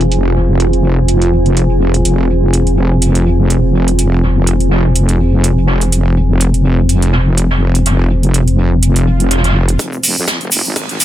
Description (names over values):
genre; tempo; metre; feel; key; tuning
bass house; 124 BPM; 4/4; swing 55% on 16ths; F minor; A4 = 438 Hz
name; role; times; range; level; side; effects
wobble bass; bass; 0.0-11.0 s; F1 to F2; -12 LUFS; equal; chorus, overdrive, sidechain pumping, high-pass filter
electronic hi-hat; drums; 0.0-11.0 s; none; -17 LUFS; right 3 dB; high-pass filter on hats, low-pass filter on hats, high-pass filter on cymbals, low-pass filter on cymbals, high-pass filter on room, low-pass filter on room
deep dark ambient pad; texture; 0.0-11.0 s; F4 to Ab5; -17 LUFS; equal; chorus, built-in reverb, sidechain pumping
jazz brush drum kit; drums; 0.1-11.0 s; hi-hat, snare drum; -24 LUFS; right 2 dB; sidechain pumping on hats, high-pass filter on hats, low-pass filter on hats, high-pass filter on snare, low-pass filter on snare, high-pass filter on room, low-pass filter on room
swell and riser; sound effects; 9.0-11.0 s; none; -26 LUFS; right 4 dB; none
electronic kick drum; drums; 9.8-10.9 s; none; -22 LUFS; equal; high-pass filter on kick, high-pass filter on room
egg shaker; percussion; 9.8-11.0 s; none; -19 LUFS; left 3 dB; none
room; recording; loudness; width
studio ambience; none; -10 LUFS; side -12 dB against mid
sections
0.0-9.8 A section; 9.8-11.0 B section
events
swell 9.0-9.8; build-up 9.8-11.0; riser 10.5-11.0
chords
0.0 Fm